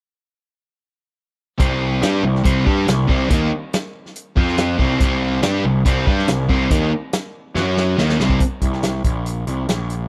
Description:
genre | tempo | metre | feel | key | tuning
classic rock | 141 BPM | 4/4 | straight | C minor | A4 = 440 Hz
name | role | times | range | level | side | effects
crunchy overdriven guitar | riff | 1.6-8.4 s | C3 to G4 | -25 LUFS | equal | spring reverb
sludgy distorted guitar | riff | 1.6-8.4 s | C3 to G4 | -23 LUFS | equal | overdrive
fuzz picked electric bass | bass | 1.6-10.1 s | Bb1 to G2 | -24 LUFS | equal | overdrive
vintage drum kit | drums | 1.6-10.0 s | hi-hat, kick drum, snare drum | -22 LUFS | equal | none
room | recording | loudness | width
little or no reverb | dry, close 1970s-style studio recording | -19 LUFS | mono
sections
1.6-8.4 A section; 8.4-10.1 B section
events
drum fill 7.6-8.4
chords
1.6 Cm; 4.4 F5; 4.8 Cm; 7.6 F#5; 8.0 Cm; 8.4 N.C.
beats
| 1.60 2.02 2.45 2.88 | 3.30 3.73 4.15 4.58 | 5.00 5.43 5.86 6.28 | 6.71 7.13 7.56 7.98 | 8.41 8.83 9.26 9.69

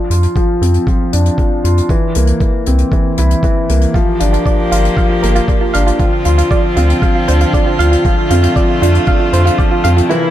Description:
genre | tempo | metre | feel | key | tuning
piano and strings electronica | 117 BPM | 4/4 | straight | unclear | A4 = 440 Hz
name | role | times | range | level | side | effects
felt-muted upright piano | riff | 0.1-10.3 s | E3 to F4 | -16 LUFS | left 1 dB | low-pass filter, tape echo
warm sub bass | bass | 0.1-10.0 s | G1 to F2 | -12 LUFS | equal | sidechain pumping
hi-hat | drums | 0.1-10.2 s | none | -27 LUFS | left 5 dB | none
electronic kick drum | drums | 0.4-9.7 s | none | -15 LUFS | equal | none
warm string quartet | sustained chords | 3.9-10.3 s | C3 to G4 | -19 LUFS | left 1 dB | sidechain pumping
soft round pluck | arpeggios | 3.9-10.2 s | E4 to F5 | -18 LUFS | right 5 dB | chorus, sidechain pumping, tape echo
room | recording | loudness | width
moderate recital hall reverb, RT60 1.5 s, studio reverb | dark, warm production | -10 LUFS | side -12 dB against mid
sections
0.0-10.3 A section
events
filter sweep on felt piano 0.0-10.3; break 10.1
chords
0.0 F5; 1.9 C7; 4.0 Gm7; 6.0 Dm7; 8.1 F6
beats
0.36 0.87 1.39 | 1.90 2.41 2.92 3.44 | 3.95 4.46 4.97 5.49 | 6.00 6.51 7.03 7.54 | 8.05 8.56 9.08 9.59 | 10.10

